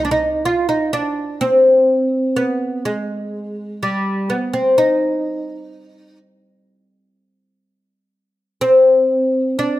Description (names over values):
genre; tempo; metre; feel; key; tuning
arabic; 125 BPM (eighths); 10/8; straight; C maqam nahawand; A4 = 440 Hz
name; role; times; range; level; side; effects
oud; melody; 0.0-9.8 s; G3 to F4; -15 LUFS; equal; none
room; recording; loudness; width
moderate recital hall reverb, RT60 1.7 s; close, detailed microphones; -14 LUFS; side -15 dB against mid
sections
0.0-9.8 A section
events
none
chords
none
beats
0.46 0.94 1.42 1.90 2.38 2.86 3.34 3.82 4.30 | 4.78 5.26 5.74 6.22 6.70 7.17 7.66 8.13 8.62 9.10 | 9.57